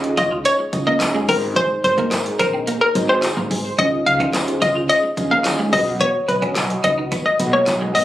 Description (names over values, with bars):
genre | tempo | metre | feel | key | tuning
dance-pop | 108 BPM | 4/4 | straight | Db major | A4 = 440 Hz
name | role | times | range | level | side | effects
soft electric-piano-like synth keys | accompaniment | 0.0-8.0 s | Db4 to Eb5 | -24 LUFS | right 1 dB | chorus, phaser, sidechain pumping
upright bass | bass | 0.0-8.0 s | Ab1 to Eb2 | -26 LUFS | equal | sidechain pumping
deep house drum kit | drums | 0.0-8.0 s | handclaps, hi-hat, kick drum, snare drum | -25 LUFS | equal | none
hollow square pluck | melody | 0.2-8.0 s | Bb4 to F5 | -18 LUFS | left 1 dB | chorus, tape echo
twelve-string electric guitar | riff | 0.2-8.0 s | Ab3 to F4 | -25 LUFS | right 3 dB | ensemble chorus
tambourine | percussion | 0.2-8.0 s | none | -35 LUFS | left 1 dB | none
room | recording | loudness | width
light reverb, digital ambience | recorded on a phone in the room, club ambience | -16 LUFS | side -13 dB against mid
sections
0.0-8.0 A section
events
kick muted 2.7-3.8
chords
0.0 Dbadd9; 1.3 Ab; 3.8 Dbadd9; 5.7 Cb